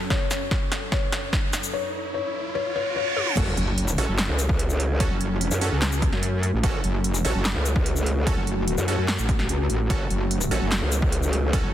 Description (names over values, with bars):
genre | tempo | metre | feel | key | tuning
heavy wobble dubstep | 147 BPM | 4/4 | half-time | F# minor | A4 = 442 Hz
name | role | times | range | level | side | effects
felt-muted upright piano | melody | 0.0-3.4 s | C#5 | -29 LUFS | left 6 dB | tape echo
evolving wavetable pad | sustained chords | 0.0-11.7 s | F#2 to A4 | -33 LUFS | equal | chorus, built-in reverb, sidechain pumping
riser, reverse cymbal and sub drop | sound effects | 0.3-5.0 s | none | -31 LUFS | right 2 dB | none
big-room dance drum kit | drums | 0.1-11.6 s | crash cymbal, handclaps, hi-hat, shaker, snare drum, toms | -28 LUFS | equal | overdrive, high-pass filter on hats, high-pass filter on snare, high-pass filter on perc, high-pass filter on toms, high-pass filter on cymbals, high-pass filter on room
electronic kick drum | drums | 0.1-11.6 s | none | -25 LUFS | equal | overdrive
supersaw stab | stabs | 3.4-11.7 s | C#4 to A4 | -32 LUFS | right 3 dB | tape echo
growl bass | bass | 3.4-11.6 s | F#1 to F#2 | -24 LUFS | equal | chorus, overdrive
metallic wobble bass | bass | 3.6-11.7 s | F#1 to F#2 | -24 LUFS | equal | distortion, chorus, overdrive
room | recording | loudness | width
light reverb, digital ambience | dense, heavily limited modern master | -21 LUFS | side -12 dB against mid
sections
0.0-3.4 A section; 3.4-11.7 B section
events
build-up 0.0-3.4; drum fill 0.0-1.7, 3.2; filter sweep on ambient pad 0.0-3.4; riser 0.3-3.4; reverse cymbal 2.6-3.4; drop 3.4-11.7; impact 3.4-5.0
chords
0.0 F#m